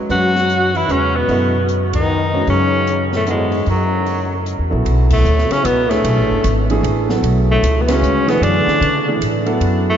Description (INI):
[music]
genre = modal jazz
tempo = 151 BPM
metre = 3/4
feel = swing 64% on 8ths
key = F# dorian, B dorian from 4.9 s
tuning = A4 = 440 Hz
[part]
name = warm baby grand piano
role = accompaniment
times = 0.0-10.0 s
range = E3 to D#5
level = -21 LUFS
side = right 3 dB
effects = none
[part]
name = clear tenor saxophone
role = melody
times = 0.1-10.0 s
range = F#3 to F#4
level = -18 LUFS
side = equal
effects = none
[part]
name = mellow trombone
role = second line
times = 0.1-10.0 s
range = F#2 to F#3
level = -22 LUFS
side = left 4 dB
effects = none
[part]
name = upright bass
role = bass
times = 0.1-10.0 s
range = F#1 to C#3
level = -18 LUFS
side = equal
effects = none
[part]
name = open jazz drum kit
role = drums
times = 0.1-9.7 s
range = crash cymbal, hi-hat, kick drum, ride cymbal, snare drum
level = -27 LUFS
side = equal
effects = none
[sound]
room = wet cathedral reverb, RT60 7.0 s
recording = in a vast, echoing space, nothing above 7.5 kHz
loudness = -13 LUFS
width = side -9 dB against mid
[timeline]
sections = 0.0-4.9 A section; 4.9-10.0 B section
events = band accent 1.9, 5.1, 7.8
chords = 0.0 F#13sus4; 4.9 Bm9